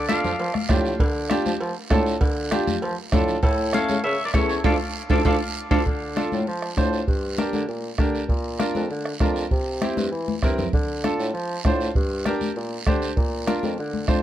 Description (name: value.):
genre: latin, cumbia.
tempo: 197 BPM.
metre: 4/4.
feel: straight.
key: D harmonic minor, D minor from 5.9 s.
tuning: A4 = 440 Hz.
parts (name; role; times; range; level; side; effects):
twangy electric guitar; melody; 0.0-0.8, 3.4-5.8 s; E4 to F5; -28 LUFS; left 1 dB; spring reverb.
mellow bassoon; bass; 0.0-14.2 s; D2 to F3; -27 LUFS; equal; none.
clear upright piano; accompaniment; 0.1-14.2 s; C4 to C5; -27 LUFS; right 1 dB; none.
bombo; percussion; 0.1-14.2 s; none; -23 LUFS; right 1 dB; none.
congas; percussion; 0.1-14.2 s; none; -29 LUFS; left 4 dB; none.
cowbell and timbales; percussion; 0.1-5.8 s; none; -32 LUFS; right 4 dB; none.
guiro; percussion; 0.1-14.2 s; none; -37 LUFS; right 6 dB; none.
room: light reverb.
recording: none.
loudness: -21 LUFS.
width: side -12 dB against mid.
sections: 0.0-5.9 A section; 5.9-14.2 B section.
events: band accent 4.6-5.9; drum fill 5.1-5.9, 10.0-10.7.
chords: 0.0 Dm; 3.4 A; 4.6 Dm; 7.1 Gm; 8.3 Bb; 9.5 C; 10.7 Dm; 12.0 Gm; 13.2 Bb.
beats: 0.10 0.40 0.70 | 1.01 1.31 1.61 1.92 | 2.22 2.52 2.83 3.13 | 3.44 3.74 4.04 4.34 | 4.65 4.95 5.26 5.56 | 5.86 6.17 6.47 6.78 | 7.08 7.39 7.69 8.00 | 8.30 8.60 8.91 9.21 | 9.52 9.82 10.13 10.43 | 10.74 11.04 11.35 11.65 | 11.95 12.26 12.56 12.87 | 13.17 13.48 13.78 14.09.